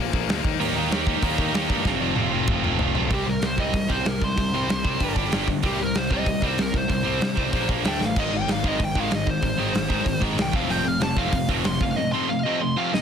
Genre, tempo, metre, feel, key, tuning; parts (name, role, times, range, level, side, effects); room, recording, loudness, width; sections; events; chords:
punk rock; 190 BPM; 4/4; straight; A4 = 440 Hz
distorted electric guitar; riff; 0.0-13.0 s; F2 to Eb4; -28 LUFS; left 14 dB; overdrive
fuzz picked electric bass; bass; 0.0-12.0 s; F1 to G2; -29 LUFS; equal; overdrive
big rock drum kit; drums; 0.1-13.0 s; crash cymbal, hi-hat, kick drum, snare drum, toms; -26 LUFS; equal
distorted electric guitar; riff; 0.6-13.0 s; Ab2 to G4; -27 LUFS; right 15 dB; overdrive
smooth overdriven lead guitar; melody; 3.1-13.0 s; G4 to C6; -28 LUFS; equal
little or no reverb; dense, heavily limited modern master; -21 LUFS; side -8 dB against mid
0.0-3.1 A section; 3.1-13.0 B section
drum fill 1.9-3.1, 8.0; lead electric guitar solo 3.1-13.0
0.4 Eb; 1.9 F; 3.1 C5; 5.0 G5; 5.6 C5; 7.5 Bb5; 7.8 D5; 8.2 Ab; 10.5 F